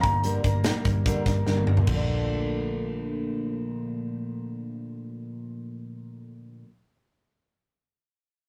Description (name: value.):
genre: jangly indie pop.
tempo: 147 BPM.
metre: 4/4.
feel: straight.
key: Bb major.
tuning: A4 = 443 Hz.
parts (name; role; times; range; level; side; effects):
dark upright piano; melody; 0.0-1.4 s; Bb5; -32 LUFS; equal; none.
fingerpicked steel-string acoustic guitar; accompaniment; 0.0-6.7 s; G2 to Bb4; -34 LUFS; equal; none.
twelve-string electric guitar; arpeggios; 0.0-6.7 s; G2 to D4; -38 LUFS; equal; phaser.
vintage muted picked electric bass; bass; 0.0-6.6 s; G1 to Bb1; -30 LUFS; equal; none.
modern studio drum kit; drums; 0.0-2.0 s; crash cymbal, hi-hat, kick drum, snare drum, toms; -29 LUFS; equal; none.
room: light reverb.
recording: rough rehearsal-room recording, tube saturation.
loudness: -27 LUFS.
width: mono.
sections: 0.0-1.9 A section; 1.9-5.1 B section.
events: drum fill 1.5-1.9.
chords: 0.0 Gm; 1.9 Bbmaj7.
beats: | 0.24 0.65 1.06 1.47 | 1.88 2.28 2.69 3.10 | 3.51 3.92 4.33 4.73.